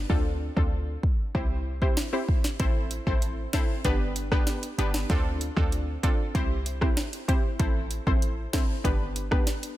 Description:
dancehall; 96 BPM; 4/4; straight; A minor; A4 = 443 Hz
short 808-style bass; bass; 0.0-9.4 s; G1 to D2; -29 LUFS; equal
analog pluck; accompaniment; 0.1-9.5 s; B3 to C5; -31 LUFS; equal; chorus, sidechain pumping
afro-pop drum kit; drums; 0.1-9.8 s; hi-hat, kick drum, rim click, snare drum; -26 LUFS; equal
little or no reverb; dense, heavily limited modern master; -24 LUFS; side -15 dB against mid
0.0-2.6 A section; 2.6-9.8 B section
0.1 Dm7; 1.3 C; 2.6 Am; 3.8 G; 5.1 Dm7; 6.3 C; 7.6 Am; 8.8 G
| 0.10 0.72 1.35 1.97 | 2.60 3.22 3.85 4.47 | 5.10 5.72 6.35 6.97 | 7.60 8.22 8.85 9.47

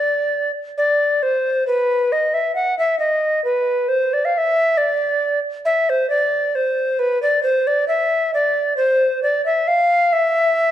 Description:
classical, baroque-style fantasia for unaccompanied recorder; 67 BPM; 3/4; rubato; A4 = 438 Hz
tenor recorder; solo; 0.0-10.7 s; B4 to F#5; -16 LUFS; equal
wet recital hall reverb, RT60 1.5 s; dark, warm production; -16 LUFS; side -11 dB against mid
0.0-10.7 A section
0.78 | 1.66 2.55 3.44 | 4.33 5.22 6.10 | 6.99 7.88 8.76 | 9.66 10.57

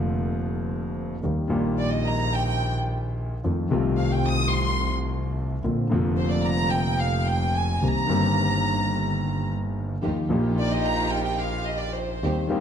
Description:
tango; 109 BPM; 4/4; rubato; Eb major; A4 = 440 Hz
warm concert grand piano; accompaniment; 0.0-12.6 s; F1 to G4; -25 LUFS; left 2 dB
clear double bass; bass; 0.0-12.6 s; F1 to F2; -29 LUFS; right 2 dB
warm chamber violin section; second line; 1.8-12.5 s; C5 to Eb6; -27 LUFS; equal
dark studio string section; stabs; 10.0-12.6 s; C4 to G4; -32 LUFS; right 4 dB
moderate recital hall reverb, RT60 1.6 s; dark, warm production; -22 LUFS; side -8 dB against mid
0.0-12.6 A section
violin section solo 0.0-12.6
0.0 Bb; 1.2 Eb; 3.4 F7; 5.6 Bbadd9; 7.8 Cm7; 10.0 Ebadd9
0.12 0.67 | 1.23 1.78 2.34 2.89 | 3.44 3.99 4.54 5.08 | 5.63 6.18 6.73 7.28 | 7.83 8.38 8.93 9.48 | 10.03 10.58 11.13 11.68 | 12.23

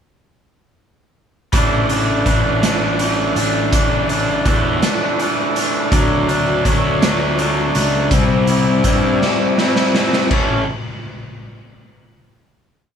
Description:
indie rock; 55 BPM (dotted quarters); 6/8; straight; A4 = 438 Hz
raw garage guitar; riff; 1.5-10.6 s; E3 to A4; -16 LUFS; equal; overdrive
fuzz picked electric bass; bass; 1.5-10.6 s; A1 to G2; -20 LUFS; equal; overdrive
raw garage drum kit; drums; 1.5-10.5 s; china cymbal, hi-hat, kick drum, snare drum; -19 LUFS; equal
little or no reverb; studio reverb; -14 LUFS; side -8 dB against mid
1.5-10.3 verse; 10.3-12.5 final chord
drum fill 9.2-10.3
1.5 Asus4; 5.9 D; 8.1 C; 10.3 A
| 1.52 2.62 | 3.71 4.81 | 5.91 7.01 | 8.11 9.21 | 10.30

